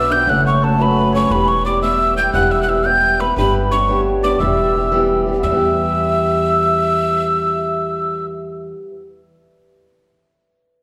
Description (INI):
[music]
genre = celtic folk, Celtic jig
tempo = 116 BPM (dotted quarters)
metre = 6/8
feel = straight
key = E dorian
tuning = A4 = 440 Hz
[part]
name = mellow hollow mid whistle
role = melody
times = 0.0-8.3 s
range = A5 to G6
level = -20 LUFS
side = equal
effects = none
[part]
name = cimbalom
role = second line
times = 0.0-8.7 s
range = A4 to G5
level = -29 LUFS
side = equal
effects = none
[part]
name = mellow hollow wooden flute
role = second line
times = 0.0-8.3 s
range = B4 to G5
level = -29 LUFS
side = equal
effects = none
[part]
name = fingerpicked old ladder-braced acoustic guitar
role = accompaniment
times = 0.0-9.1 s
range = E3 to B4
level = -22 LUFS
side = equal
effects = none
[part]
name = upright bass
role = bass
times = 0.0-8.7 s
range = E1 to E2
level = -25 LUFS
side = equal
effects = none
[sound]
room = wet recital hall reverb, RT60 1.7 s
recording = recorded in a church or concert hall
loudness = -16 LUFS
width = mono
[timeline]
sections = 0.0-5.4 A section; 5.4-7.5 B section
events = none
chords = 0.3 F#m; 1.3 Em; 3.4 G; 4.4 Em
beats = | 0.27 0.79 | 1.30 1.82 | 2.34 2.85 | 3.37 3.88 | 4.40 4.92 | 5.43 5.95 | 6.46 6.98